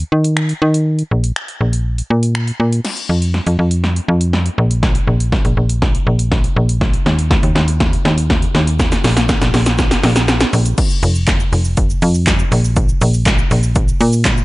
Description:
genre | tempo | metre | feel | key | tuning
dance-pop | 121 BPM | 4/4 | straight | unclear | A4 = 439 Hz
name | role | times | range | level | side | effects
slap-like FM bass | bass | 0.0-14.4 s | F1 to Eb3 | -14 LUFS | equal | sidechain pumping
punchy analog drum machine | drums | 0.0-14.4 s | crash cymbal, finger snaps, handclaps, hi-hat, kick drum, shaker, snare drum | -16 LUFS | equal | overdrive
room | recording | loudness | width
light reverb | nothing above 10.4 kHz | -12 LUFS | side -20 dB against mid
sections
0.0-2.8 A section; 2.8-10.8 B section; 10.8-14.4 C section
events
build-up 2.8-10.8; drum fill 2.8-10.8; drop 10.8-14.4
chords
none

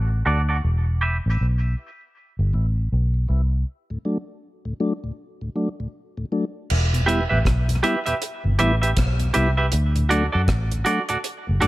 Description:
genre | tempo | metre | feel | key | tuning
dub reggae | 79 BPM | 4/4 | swing 61% on 16ths | E minor | A4 = 440 Hz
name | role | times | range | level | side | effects
vintage muted fingered electric bass | bass | 0.0-11.7 s | E1 to F#2 | -20 LUFS | equal | none
mellow tonewheel organ | accompaniment | 0.1-11.7 s | D2 to E4 | -26 LUFS | left 1 dB | slow rotary speaker, high-pass filter, low-pass filter
semi-hollow electric guitar | accompaniment | 0.3-1.2, 7.1-11.7 s | F#4 to E5 | -24 LUFS | right 3 dB | high-pass filter, low-pass filter, tape echo
deep reggae drum kit | drums | 6.7-11.7 s | crash cymbal, hi-hat, kick drum, rim click | -25 LUFS | equal | none
room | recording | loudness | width
studio ambience | none | -20 LUFS | side -17 dB against mid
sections
0.0-6.7 A section; 6.7-11.7 B section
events
break 0.0-6.7; filter sweep 0.0-6.7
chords
0.0 D; 0.6 Em; 3.7 D; 6.7 Em; 9.7 D

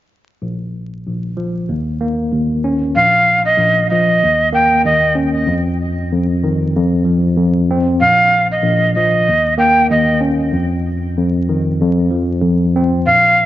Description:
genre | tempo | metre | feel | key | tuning
hip hop | 95 BPM | 4/4 | swing 58% on 16ths | Bb dorian | A4 = 440 Hz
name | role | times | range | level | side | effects
tine electric piano | accompaniment | 0.4-13.5 s | Bb1 to Db4 | -15 LUFS | left 1 dB | overdrive, fast stereo tremolo, high-pass filter, low-pass filter
breathy bright jazz flute | melody | 3.0-13.5 s | Eb5 to G5 | -12 LUFS | right 1 dB | high-pass filter, low-pass filter, analog delay
room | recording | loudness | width
light reverb, studio reverb | vinyl crackle, nothing above 7.5 kHz | -12 LUFS | side -14 dB against mid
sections
0.4-3.0 A section; 3.0-13.5 B section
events
none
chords
0.4 Bb5; 1.7 Eb5; 3.0 Bb5; 4.2 Eb5; 5.5 Ebsus2/F; 6.7 F5; 8.0 Bb5; 9.3 Eb5; 10.5 Ebsus2/F; 11.8 F5

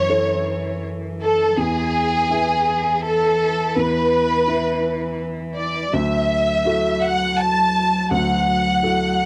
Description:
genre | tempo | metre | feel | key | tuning
neoclassical piano and strings | 82 BPM | 3/4 | rubato | unclear | A4 = 440 Hz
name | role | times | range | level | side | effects
rich studio violin section | melody | 0.0-9.3 s | G#4 to A5 | -21 LUFS | equal | cassette tape
dark cello | second line | 0.0-9.3 s | E3 to F#3 | -29 LUFS | equal | cassette tape
felt-muted upright piano | accompaniment | 0.0-9.3 s | D2 to E5 | -27 LUFS | equal | cassette tape
room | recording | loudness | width
moderate small room reverb, RT60 0.6 s | home recording on cassette | -20 LUFS | mono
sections
0.0-9.3 A section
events
none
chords
0.0 F#m7; 1.6 E; 5.9 Dadd9

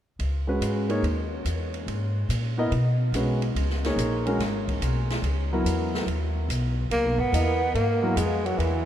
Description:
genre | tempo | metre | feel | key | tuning
modal jazz | 143 BPM | 4/4 | swing 67% on 8ths | C# dorian | A4 = 438 Hz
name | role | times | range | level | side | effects
upright bass | bass | 0.2-8.9 s | G#1 to B2 | -26 LUFS | equal | none
open jazz drum kit | drums | 0.2-8.7 s | hi-hat, kick drum, ride cymbal, snare drum | -35 LUFS | right 2 dB | none
warm concert grand piano | accompaniment | 0.5-8.2 s | F#3 to D#5 | -28 LUFS | equal | none
breathy tenor saxophone | melody | 6.9-8.9 s | E3 to B3 | -24 LUFS | right 1 dB | none
room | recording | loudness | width
wet cathedral reverb, RT60 6.3 s | in a vast, echoing space | -23 LUFS | side -11 dB against mid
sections
0.2-6.9 A section; 6.9-8.9 B section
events
none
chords
0.2 C#m9; 6.9 C#m9 (rootless)

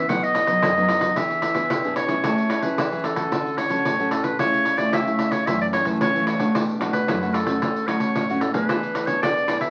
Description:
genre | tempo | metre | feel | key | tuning
samba and choro | 112 BPM | 4/4 | straight | A major | A4 = 440 Hz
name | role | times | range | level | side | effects
clear clarinet | melody | 0.0-9.7 s | A4 to F#5 | -25 LUFS | equal | none
nylon-string guitar | accompaniment | 0.0-9.7 s | F#2 to A4 | -27 LUFS | equal | none
pandeiro | percussion | 0.1-9.7 s | none | -28 LUFS | equal | none
room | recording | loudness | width
wet studio ambience, RT60 0.5 s | very old 78 rpm record, vinyl crackle | -22 LUFS | mono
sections
0.0-2.2 A section; 2.2-9.7 B section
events
none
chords
0.1 B; 1.2 E7; 2.2 Amaj7; 3.3 Dmaj7; 4.4 Amaj7/C#; 5.5 F#m7; 6.5 Bm7; 7.6 Dmaj7; 8.7 E7

